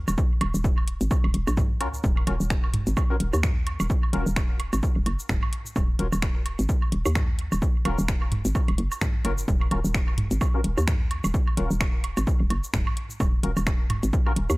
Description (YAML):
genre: minimal techno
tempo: 129 BPM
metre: 4/4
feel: swing 57% on 16ths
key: Eb minor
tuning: A4 = 441 Hz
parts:
  - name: hollow knocking FM bass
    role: bass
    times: 0.0-14.6 s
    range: Eb1 to Eb2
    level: -26 LUFS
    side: equal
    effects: sidechain pumping
  - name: garage drum kit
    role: drums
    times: 0.1-14.6 s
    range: finger snaps, hi-hat, shaker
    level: -33 LUFS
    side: equal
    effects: none
  - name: electronic woodblock and toms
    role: percussion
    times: 0.1-14.6 s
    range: none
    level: -32 LUFS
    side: right 2 dB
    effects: tape echo
  - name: electronic kick drum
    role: drums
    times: 0.2-14.2 s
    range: none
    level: -24 LUFS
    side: equal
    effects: none
  - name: percussive organ stab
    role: stabs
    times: 1.8-14.3 s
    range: Db4 to Bb4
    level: -36 LUFS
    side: left 3 dB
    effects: ensemble chorus, tape echo
room: digital ambience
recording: dry, gritty hardware recording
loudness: -22 LUFS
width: side -22 dB against mid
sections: 0.0-14.6 A section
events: none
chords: 0.0 Ebm7